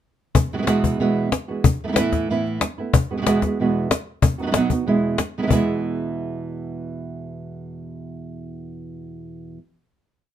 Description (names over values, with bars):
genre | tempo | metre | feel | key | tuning
flamenco | 187 BPM | 4/4 | straight | E major | A4 = 440 Hz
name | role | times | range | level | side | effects
cajon | percussion | 0.3-5.6 s | none | -19 LUFS | left 4 dB | none
nylon-string guitar | accompaniment | 0.4-9.6 s | E2 to F#4 | -22 LUFS | right 3 dB | none
room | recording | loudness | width
moderate small room reverb, RT60 0.5 s | minimal, uncompressed stereo recording | -19 LUFS | side -10 dB against mid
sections
0.4-5.5 groove; 5.5-8.1 final chord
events
none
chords
0.4 Eadd9; 1.6 Asus2; 2.9 Eadd9; 4.2 B; 4.9 E